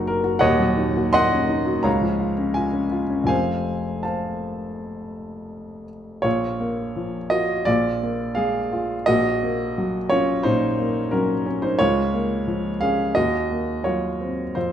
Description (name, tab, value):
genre	classical, romantic character piece for solo piano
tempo	79-90 BPM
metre	4/4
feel	rubato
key	Bb minor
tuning	A4 = 440 Hz
part	warm grand piano	solo	0.0-14.7 s	Eb1 to C6	-20 LUFS	equal	none
room	moderate recital hall reverb, RT60 1.4 s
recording	none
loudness	-20 LUFS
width	side -9 dB against mid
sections	0.0-6.2 A section; 6.2-14.7 B section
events	none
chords	0.4 Ebm7; 1.9 Bbm/Db; 3.3 F; 6.2 Bbm; 7.7 Bb7; 9.1 Ebm7/Bb; 11.8 Bbm/Db; 13.2 Cm7b5/Eb